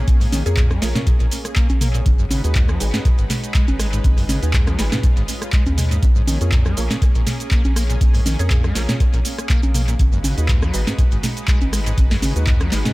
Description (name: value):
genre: acid house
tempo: 121 BPM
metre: 4/4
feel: swing 55% on 16ths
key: Bb phrygian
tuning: A4 = 440 Hz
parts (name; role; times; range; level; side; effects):
- lush unison pad; sustained chords; 0.0-12.9 s; Ab3 to Cb5; -32 LUFS; equal; chorus, sidechain pumping
- overdriven acid bass; riff; 0.0-12.9 s; Gb2 to Bb3; -27 LUFS; equal; distortion, analog chorus, sidechain pumping, tape echo
- round analog bass; bass; 0.0-12.8 s; Ab1 to F2; -20 LUFS; equal; sidechain pumping
- deep dark ambient pad; texture; 0.0-12.9 s; Ab4 to Gb5; -36 LUFS; left 1 dB; chorus, built-in reverb, sidechain pumping
- booming analog drum machine; drums; 0.1-12.9 s; congas, handclaps, hi-hat, rim click, shaker, snare drum, toms; -24 LUFS; equal; studio reverb, tape echo
- electronic kick drum; drums; 0.1-12.6 s; none; -17 LUFS; equal; studio reverb
- mallet-like synth pluck; melody; 0.5-0.7, 8.4-8.6 s; Ab4; -34 LUFS; left 2 dB; ensemble chorus, analog delay
- deep mellow chord stab; stabs; 0.5-12.9 s; Eb4 to Db5; -33 LUFS; right 2 dB; chorus, tape echo
room: digital ambience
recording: echo-heavy mix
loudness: -15 LUFS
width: side -20 dB against mid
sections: 0.0-12.9 A section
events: none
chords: 0.0 Bbm7; 2.1 Abm7; 6.0 Bbm7; 10.0 Abm7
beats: | 0.08 0.57 1.07 1.56 | 2.06 2.56 3.05 3.55 | 4.04 4.54 5.03 5.53 | 6.03 6.52 7.02 7.51 | 8.01 8.51 9.00 9.50 | 9.99 10.49 10.98 11.48 | 11.98 12.47